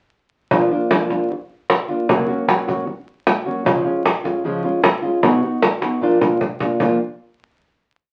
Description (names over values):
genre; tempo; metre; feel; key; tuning
flamenco; 153 BPM; 4/4; straight; unclear; A4 = 440 Hz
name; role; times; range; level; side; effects
nylon-string guitar; accompaniment; 0.5-7.0 s; Gb2 to Gb4; -21 LUFS; equal; none
cajon; percussion; 0.5-6.9 s; none; -20 LUFS; equal; none
room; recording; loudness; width
wet studio reverb, RT60 0.5 s; very old 78 rpm record, vinyl crackle, nothing above 10.5 kHz; -19 LUFS; mono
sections
0.5-6.8 groove; 6.8-8.1 final chord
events
drum fill 5.8-6.8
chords
0.5 Bb; 2.1 Gb; 3.7 Db; 5.2 B; 6.0 Bb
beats
| 0.52 0.91 1.30 1.70 | 2.09 2.48 2.88 3.27 | 3.66 4.05 4.45 4.84 | 5.23 5.62 6.02 6.41 | 6.80